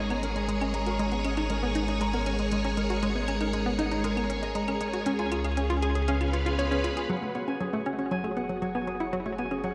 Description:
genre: ambient, sequencer-driven space music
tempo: 118 BPM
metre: 4/4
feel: straight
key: G# minor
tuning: A4 = 440 Hz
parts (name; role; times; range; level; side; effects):
- string machine, full ensemble; sustained chords; 0.0-9.7 s; G#3 to A#5; -34 LUFS; equal; ensemble chorus
- concert harp; arpeggios; 0.0-9.7 s; E#4 to A#5; -38 LUFS; equal; low-pass filter, delay
- hollow square pluck; riff; 0.0-9.7 s; F#3 to C#5; -33 LUFS; equal; chorus, delay
- warm sub bass; bass; 0.0-9.7 s; F#1 to C#2; -35 LUFS; equal; none
- wind-like tuned noise texture; texture; 0.0-7.1 s; C#4 to C#5; -45 LUFS; equal; none
- electronic hi-hat and claves; percussion; 0.1-9.7 s; none; -46 LUFS; equal; delay
room: moderate lush hall reverb, RT60 2.9 s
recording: cassette tape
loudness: -29 LUFS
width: mono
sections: 0.0-7.1 A section; 7.1-9.7 B section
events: none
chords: 0.0 G#madd9; 5.1 C#7; 7.1 F#madd9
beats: 0.48 | 0.99 1.50 2.01 2.52 | 3.03 3.54 4.04 4.55 | 5.06 5.57 6.08 6.59 | 7.09 7.60 8.11 8.62 | 9.13 9.64

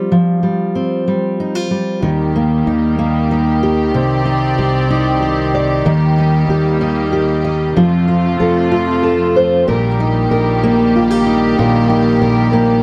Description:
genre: six-eight pop ballad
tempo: 63 BPM (dotted quarters)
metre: 6/8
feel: straight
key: unclear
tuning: A4 = 441 Hz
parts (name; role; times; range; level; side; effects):
- fingerpicked steel-string acoustic guitar; accompaniment; 0.0-12.8 s; Bb2 to Eb5; -16 LUFS; equal; none
- rich studio string section; sustained chords; 2.0-12.8 s; C3 to D5; -22 LUFS; equal; none
- sustaining fretless electric bass; bass; 2.0-12.8 s; Bb1 to F2; -23 LUFS; equal; lush chorus
room: light reverb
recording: dry, gritty hardware recording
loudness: -15 LUFS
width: mono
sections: 0.0-2.0 A section; 2.0-9.7 B section; 9.7-12.8 C section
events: none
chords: 0.0 Fsus2; 2.0 Eb; 3.9 Cmadd9; 5.9 Eb; 7.8 F; 9.7 Eb/Bb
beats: | 0.12 1.07 | 2.03 2.99 | 3.94 4.90 | 5.85 6.81 | 7.76 8.72 | 9.67 10.63 | 11.58 12.54

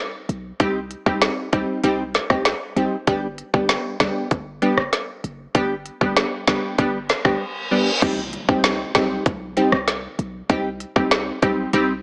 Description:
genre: dancehall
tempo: 97 BPM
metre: 4/4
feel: straight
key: unclear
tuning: A4 = 441 Hz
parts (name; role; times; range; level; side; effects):
- warm 808-style bass; bass; 0.3-12.0 s; F#1 to C2; -33 LUFS; equal; none
- island pop drum kit; drums; 0.3-11.9 s; crash cymbal, hi-hat, kick drum, rim click, snare drum; -23 LUFS; equal; overdrive
- wavetable chord stab; accompaniment; 0.6-11.9 s; G3 to G4; -24 LUFS; equal; none
- reverse cymbal and impact; sound effects; 7.4-10.5 s; none; -30 LUFS; equal; none
room: light reverb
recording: small speaker sound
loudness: -21 LUFS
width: mono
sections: 0.0-8.0 A section; 8.0-12.0 B section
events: reverse cymbal 7.4-8.0; impact 8.0-10.5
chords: 0.0 Cm; 3.1 G; 8.0 Cm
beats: | 0.60 1.22 1.84 2.46 | 3.07 3.69 4.31 4.93 | 5.55 6.17 6.79 7.40 | 8.02 8.64 9.26 9.88 | 10.50 11.12 11.73

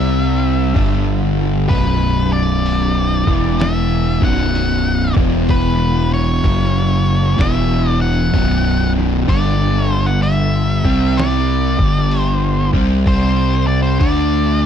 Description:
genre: stoner and doom metal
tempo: 63 BPM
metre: 4/4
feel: swing 65% on 8ths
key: B phrygian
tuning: A4 = 440 Hz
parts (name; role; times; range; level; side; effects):
- octave-fuzz lead guitar; melody; 0.0-14.7 s; B4 to F#5; -22 LUFS; left 2 dB; distortion, digital delay
- fuzz guitar; riff; 0.0-14.7 s; B1 to D4; -16 LUFS; equal; distortion
- fuzz fingered electric bass; bass; 0.0-14.7 s; B0 to D2; -19 LUFS; equal; overdrive
- lo-fi sampler-style drum kit; drums; 0.8-14.3 s; hi-hat, kick drum, snare drum; -18 LUFS; equal; none
room: little or no reverb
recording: dark, warm production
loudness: -13 LUFS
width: side -8 dB against mid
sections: 0.0-14.7 A section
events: kick and snare drop out 0.8-1.7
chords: 0.0 C5; 0.8 G5; 1.7 Bm; 3.1 E5; 6.4 F#5; 7.4 E5; 8.3 B5; 9.3 G5; 10.7 C5; 14.0 D5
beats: 0.76 | 1.70 2.65 3.60 4.54 | 5.49 6.44 7.38 8.33 | 9.28 10.22 11.17 12.12 | 13.06 14.01

